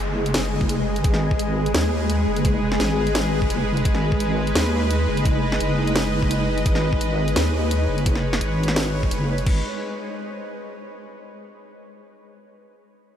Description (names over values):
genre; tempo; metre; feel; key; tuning
half-time drum and bass; 171 BPM; 4/4; half-time; G# minor; A4 = 440 Hz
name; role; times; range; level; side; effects
bowed-like drone; sustained chords; 0.0-10.8 s; G#3 to D#5; -26 LUFS; equal; built-in reverb, sidechain pumping
deep soft wobble bass; bass; 0.0-9.6 s; F#1 to D#2; -23 LUFS; equal; chorus, tube saturation
downlifter; sound effects; 0.0-1.0 s; none; -39 LUFS; equal; none
flickering grainy texture; texture; 0.0-9.5 s; G#3 to G#4; -30 LUFS; equal; built-in reverb
drum and bass drum kit; drums; 0.3-9.5 s; crash cymbal, hi-hat, snare drum; -27 LUFS; equal; studio reverb
electronic kick drum; drums; 0.6-9.5 s; none; -22 LUFS; equal; studio reverb
room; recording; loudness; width
moderate huge ambient reverb, RT60 6.0 s; dreamy mix soaked in reverb; -19 LUFS; side -9 dB against mid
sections
0.0-9.5 A section; 9.5-10.9 B section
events
none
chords
0.0 G#m; 9.5 G#